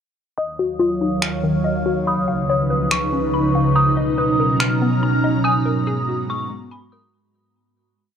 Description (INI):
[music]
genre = hip hop, atmospheric cloud-rap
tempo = 142 BPM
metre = 4/4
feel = half-time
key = G# dorian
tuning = A4 = 441 Hz
[part]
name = dark detuned synth bell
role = melody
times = 0.4-7.1 s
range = B5 to E#6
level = -24 LUFS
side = equal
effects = chorus, low-pass filter, digital delay
[part]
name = ethereal airy pad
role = sustained chords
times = 0.8-7.1 s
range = C#2 to A#5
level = -19 LUFS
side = right 1 dB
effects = ensemble chorus, built-in reverb, low-pass filter
[part]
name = hollow square pluck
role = arpeggios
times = 0.4-7.1 s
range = D#3 to B5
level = -24 LUFS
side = left 4 dB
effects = chorus, low-pass filter, digital delay
[part]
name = electronic finger snaps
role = drums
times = 1.2-4.7 s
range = none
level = -22 LUFS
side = equal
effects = overdrive, vintage 12-bit sampler grit
[sound]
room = little or no reverb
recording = dark, warm production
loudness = -17 LUFS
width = side -8 dB against mid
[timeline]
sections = 0.4-7.1 breakdown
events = filter sweep 0.4-7.1; break 5.4-7.1; fade-out 5.4-7.1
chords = 0.4 D#m9; 2.1 C#7; 3.8 Bmaj7; 5.4 G#m9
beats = | 0.38 0.80 1.22 1.65 | 2.07 2.49 2.91 3.33 | 3.76 4.18 4.60 5.03 | 5.45 5.87 6.29 6.72